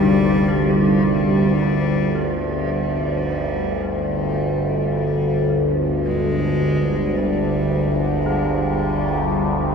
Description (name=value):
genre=dark ambient drone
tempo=54 BPM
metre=4/4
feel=straight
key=unclear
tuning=A4 = 439 Hz
part: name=rich cello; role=melody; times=0.0-9.7 s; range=F3 to Ab3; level=-26 LUFS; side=left 3 dB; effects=ping-pong delay
part: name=deep dark ambient pad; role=sustained chords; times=0.0-9.7 s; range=G3 to G4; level=-24 LUFS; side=equal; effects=chorus, built-in reverb
part: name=carillon bells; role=arpeggios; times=0.0-9.7 s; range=G2 to F4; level=-29 LUFS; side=equal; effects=ping-pong delay
part: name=overtone-sweeping drone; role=drone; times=0.0-9.7 s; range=G1 to D2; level=-20 LUFS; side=equal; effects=chorus, built-in reverb
part: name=bubbling stepped-filter texture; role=texture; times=0.1-1.6 s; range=D5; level=-41 LUFS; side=equal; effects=none
room=wet huge ambient reverb, RT60 7.6 s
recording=dreamy mix soaked in reverb, lossy compression artefacts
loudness=-17 LUFS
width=side -6 dB against mid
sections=0.0-1.6 A section; 1.6-9.7 B section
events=fade-in on ambient pad 1.6-9.7; fade-in on church bells 1.6-9.7; fade-in on cello 1.6-9.7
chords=0.0 G5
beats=0.47 | 1.58 2.69 3.80 4.91 | 6.03 7.14 8.25 9.36